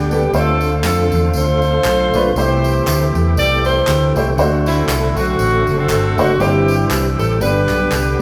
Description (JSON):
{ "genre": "uptempo gospel", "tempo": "119 BPM", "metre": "4/4", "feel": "swing 56% on 8ths", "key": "unclear", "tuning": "A4 = 444 Hz", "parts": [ { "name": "bright saxophone section", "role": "melody", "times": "0.0-8.2 s", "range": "A3 to D5", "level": "-20 LUFS", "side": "equal", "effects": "none" }, { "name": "warm upright piano", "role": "accompaniment", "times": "0.0-8.2 s", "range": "G2 to C5", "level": "-22 LUFS", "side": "equal", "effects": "none" }, { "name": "overdriven tonewheel organ", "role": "sustained chords", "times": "0.0-8.2 s", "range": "D3 to G4", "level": "-24 LUFS", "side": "equal", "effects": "slow rotary speaker, chorus vibrato" }, { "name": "fingered electric bass", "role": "bass", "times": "0.0-8.2 s", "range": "F#1 to F2", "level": "-20 LUFS", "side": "equal", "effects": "none" }, { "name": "tambourine and handclaps", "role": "percussion", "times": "0.1-8.0 s", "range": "none", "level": "-29 LUFS", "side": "equal", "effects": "none" } ], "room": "wet large studio reverb, RT60 1.3 s", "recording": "band playing live in one room", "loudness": "-15 LUFS", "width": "mono", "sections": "0.0-8.2 A section", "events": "none", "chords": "0.3 Dm7; 2.4 Am7/C; 4.4 D7; 6.4 C/G; 7.4 G", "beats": "| 0.34 0.84 1.35 1.86 | 2.36 2.87 3.37 3.88 | 4.38 4.89 5.39 5.90 | 6.40 6.91 7.41 7.92" }